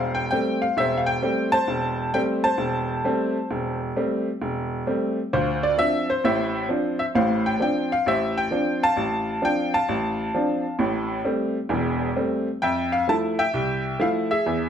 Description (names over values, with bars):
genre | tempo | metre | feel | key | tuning
solo jazz | 132 BPM | 4/4 | swing 66% on 8ths | A minor | A4 = 441 Hz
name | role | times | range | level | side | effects
bright upright piano | solo | 0.0-14.7 s | E1 to A5 | -21 LUFS | equal | none
room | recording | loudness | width
moderate large studio reverb, RT60 1.0 s | band playing live in one room | -21 LUFS | side -8 dB against mid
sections
0.0-14.7 A section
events
none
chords
0.0 Am7; 5.3 Dm7; 10.8 Am7; 12.6 Fmaj7